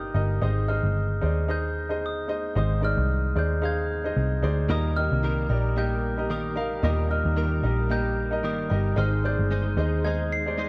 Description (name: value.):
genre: pop.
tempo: 112 BPM.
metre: 4/4.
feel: swing 56% on 16ths.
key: unclear.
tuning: A4 = 439 Hz.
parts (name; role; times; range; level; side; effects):
glockenspiel with rubber mallets; melody; 0.0-10.7 s; Eb6 to C7; -35 LUFS; equal; none.
warm baby grand piano; accompaniment; 0.0-10.7 s; Ab2 to F5; -32 LUFS; equal; none.
vintage muted picked electric bass; bass; 0.0-10.7 s; G1 to Eb2; -28 LUFS; equal; none.
direct-recorded clean electric guitar; riff; 4.7-10.7 s; Eb3 to C5; -34 LUFS; equal; ensemble chorus.
room: light reverb, studio reverb.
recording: dark, warm production.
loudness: -26 LUFS.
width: mono.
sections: 0.0-10.7 A section.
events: none.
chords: 0.4 Ab; 4.7 Eb; 9.0 Ab.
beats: | 0.42 0.96 1.49 2.02 | 2.56 3.09 3.63 4.16 | 4.70 5.23 5.76 6.30 | 6.83 7.37 7.90 8.44 | 8.97 9.51 10.04 10.58.